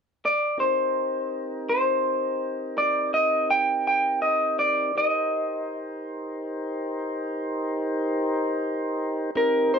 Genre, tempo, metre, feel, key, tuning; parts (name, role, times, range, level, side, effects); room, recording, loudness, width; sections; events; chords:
blues; 55 BPM (dotted quarters); 12/8; straight; C minor; A4 = 444 Hz
electric guitar through a small old amp; melody; 0.3-9.8 s; Bb4 to G5; -22 LUFS; equal
mellow tonewheel organ; sustained chords; 0.6-9.8 s; C4 to C5; -29 LUFS; equal; slow rotary speaker, plate reverb
wet studio reverb, RT60 0.5 s; -23 LUFS; side -6 dB against mid
0.6-9.3 A section
0.0 N.C.; 0.6 Cm7